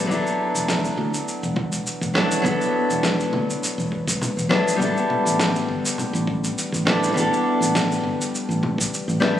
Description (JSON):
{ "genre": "sunset chillout", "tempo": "102 BPM", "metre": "4/4", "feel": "swing 53% on 16ths", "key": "unclear", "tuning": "A4 = 440 Hz", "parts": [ { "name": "nylon-string guitar", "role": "accompaniment", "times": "0.0-9.4 s", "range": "F#3 to A4", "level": "-22 LUFS", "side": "left 1 dB", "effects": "auto-pan, digital delay" }, { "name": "fingered electric bass", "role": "bass", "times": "0.1-9.4 s", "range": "E1 to D2", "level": "-26 LUFS", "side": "equal", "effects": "none" }, { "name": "electronic kick drum", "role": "drums", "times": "0.1-8.9 s", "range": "none", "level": "-30 LUFS", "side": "equal", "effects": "none" }, { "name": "electronic shaker, snare drum and congas", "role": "drums", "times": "0.1-9.3 s", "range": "none", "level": "-26 LUFS", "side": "equal", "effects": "none" } ], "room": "moderate lush hall reverb, RT60 2.0 s", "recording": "recorded on a phone in the room, club reverb", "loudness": "-19 LUFS", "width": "side -11 dB against mid", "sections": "0.0-9.4 A section", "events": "none", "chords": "0.1 E9sus4; 4.8 A9sus4" }